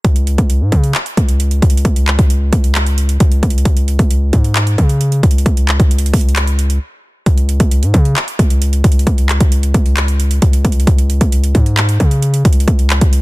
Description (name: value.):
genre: hip hop, trap.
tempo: 133 BPM.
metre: 4/4.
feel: half-time.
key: unclear.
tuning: A4 = 439 Hz.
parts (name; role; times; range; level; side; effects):
hard-hitting 808-style bass; bass; 0.0-13.2 s; C#2 to C#3; -13 LUFS; equal; none.
trap drum kit; drums; 0.0-13.2 s; handclaps, hi-hat, kick drum; -13 LUFS; equal; none.
room: little or no reverb.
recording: dense, heavily limited modern master.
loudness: -11 LUFS.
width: side -20 dB against mid.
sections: 0.0-7.3 A section; 7.3-13.2 B section.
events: break 6.8-7.3.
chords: none.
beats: | 0.04 0.50 0.95 1.40 | 1.85 2.30 2.75 3.20 | 3.65 4.11 4.56 5.01 | 5.46 5.91 6.36 6.81 | 7.26 7.71 8.16 8.62 | 9.07 9.52 9.97 10.42 | 10.87 11.32 11.77 12.22 | 12.68 13.13.